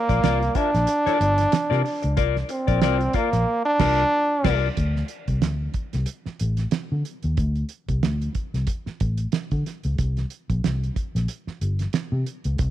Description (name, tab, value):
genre	funk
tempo	92 BPM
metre	4/4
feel	swing 56% on 16ths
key	unclear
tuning	A4 = 439 Hz
part	bright trombone	melody	0.0-4.6 s	Bb3 to D4	-22 LUFS	right 1 dB	none
part	clean electric guitar	accompaniment	0.1-4.7 s	F4 to E5	-27 LUFS	left 15 dB	spring reverb
part	vintage muted fingered electric bass	bass	0.1-12.7 s	G1 to D3	-23 LUFS	equal	transformer saturation
part	cloth-damped thuddy drum kit	drums	0.1-12.7 s	crash cymbal, hi-hat, kick drum, snare drum	-26 LUFS	right 3 dB	none
room	small room ambience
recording	1960s-style stereo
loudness	-21 LUFS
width	side -12 dB against mid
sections	0.0-4.8 A section; 4.8-12.7 B section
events	trombone solo 0.0-4.8; band accent 3.5-4.8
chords	0.0 C9sus4; 4.8 D5; 10.0 C5